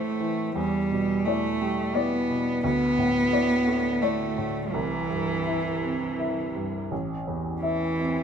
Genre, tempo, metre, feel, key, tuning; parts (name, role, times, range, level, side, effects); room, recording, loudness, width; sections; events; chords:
neoclassical piano and strings; 85 BPM; 3/4; rubato; A minor; A4 = 438 Hz
rich cello; second line; 0.0-8.2 s; E3 to B3; -26 LUFS; right 1 dB; tape echo
clear upright piano; accompaniment; 0.0-8.2 s; A1 to E5; -28 LUFS; left 1 dB
moderate plate reverb, RT60 2.5 s; -24 LUFS; side -7 dB against mid
0.0-8.2 A section
0.0 Am; 0.6 Em7; 2.6 Dsus2; 4.7 C; 6.9 Am